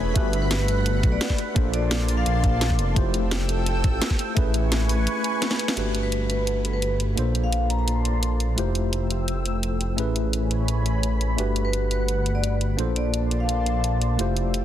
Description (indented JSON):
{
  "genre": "liquid drum and bass",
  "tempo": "171 BPM",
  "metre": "4/4",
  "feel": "straight",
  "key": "G major",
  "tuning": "A4 = 440 Hz",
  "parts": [
    { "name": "tine electric piano", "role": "accompaniment", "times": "0.0-14.6 s", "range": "A3 to C5", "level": "-28 LUFS", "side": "left 1 dB", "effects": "medium stereo tremolo, digital delay" },
    { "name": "lush unison pad", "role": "sustained chords", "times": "0.0-14.6 s", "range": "A3 to E6", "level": "-32 LUFS", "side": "right 1 dB", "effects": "chorus, phaser, sidechain pumping" },
    { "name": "dark detuned saw bass", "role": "bass", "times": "0.0-14.6 s", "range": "E1 to B1", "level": "-24 LUFS", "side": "equal", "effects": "none" },
    { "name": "drum and bass drum kit", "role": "drums", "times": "0.2-14.6 s", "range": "hi-hat, snare drum", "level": "-29 LUFS", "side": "equal", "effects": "none" },
    { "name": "electronic kick drum", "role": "drums", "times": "0.2-4.4 s", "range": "none", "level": "-22 LUFS", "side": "equal", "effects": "none" },
    { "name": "vibraphone with medium hard mallets", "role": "melody", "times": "0.4-2.7, 6.0-7.8, 11.6-13.9 s", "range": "B4 to Bb5", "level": "-32 LUFS", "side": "left 2 dB", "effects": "digital delay" }
  ],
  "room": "light reverb, digital ambience",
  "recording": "dense, heavily limited modern master",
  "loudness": "-21 LUFS",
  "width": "side -11 dB against mid",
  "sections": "0.0-5.8 A section; 5.8-14.6 B section",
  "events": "drop 0.0-5.8; break 5.1-5.8; drum fill 5.4-5.8; band accent 5.7",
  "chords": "0.2 Gmaj9; 1.6 Bbmaj9; 3.0 Fmaj9; 4.4 Amaj9; 5.8 Gmaj9; 7.2 Bbmaj9; 8.6 Fmaj9; 10.0 Amaj9; 11.4 Gmaj9; 12.8 Bbmaj9"
}